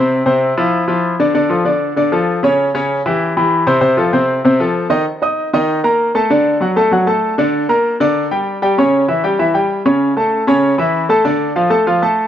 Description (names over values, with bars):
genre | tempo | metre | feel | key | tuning
latin | 194 BPM | 4/4 | straight | D minor | A4 = 440 Hz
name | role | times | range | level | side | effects
clear concert grand piano | solo | 0.0-12.3 s | C3 to Eb6 | -12 LUFS | equal | none
room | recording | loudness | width
moderate plate reverb, RT60 2.7 s | worn, warbling old tape, cassette tape, warbly pitch drift | -12 LUFS | side -10 dB against mid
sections
0.0-5.1 A section; 5.1-12.3 B section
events
none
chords
0.1 F5; 1.4 Dmmaj7; 2.6 C#dim; 3.8 Cmadd11; 5.1 Eb5; 6.3 D; 7.5 Gm; 8.8 C#dim; 10.0 A; 11.3 Dm